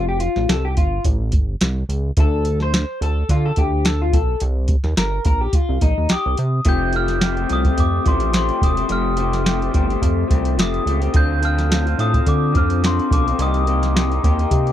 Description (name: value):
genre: indie pop, bedroom pop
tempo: 107 BPM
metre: 4/4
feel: swing 55% on 16ths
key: unclear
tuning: A4 = 440 Hz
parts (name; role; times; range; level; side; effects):
- electric guitar through a small old amp; accompaniment; 0.0-14.7 s; C3 to C5; -23 LUFS; left 4 dB; lush chorus, warbly pitch drift
- chorused synth bass; bass; 0.0-14.7 s; E1 to D3; -20 LUFS; equal; none
- soft vintage rhythm box; drums; 0.2-14.7 s; hi-hat, kick drum, snare drum; -18 LUFS; equal; overdrive
- glockenspiel with soft plastic mallets; melody; 6.1-14.7 s; C6 to G6; -24 LUFS; equal; analog chorus, slapback echo
room: little or no reverb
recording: dry, close 1970s-style studio recording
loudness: -16 LUFS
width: side -11 dB against mid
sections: 0.0-6.7 A section; 6.7-14.7 B section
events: clean electric guitar solo 0.0-6.7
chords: 0.0 Fadd9; 2.2 Bm7b5; 4.4 Cm7; 6.7 Fadd9; 11.1 Dm7; 13.4 Cm7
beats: 0.49 1.05 1.61 | 2.17 2.73 3.29 3.85 | 4.41 4.97 5.53 6.09 | 6.65 7.21 7.78 8.34 | 8.90 9.46 10.02 10.58 | 11.14 11.71 12.27 12.83 | 13.39 13.96 14.52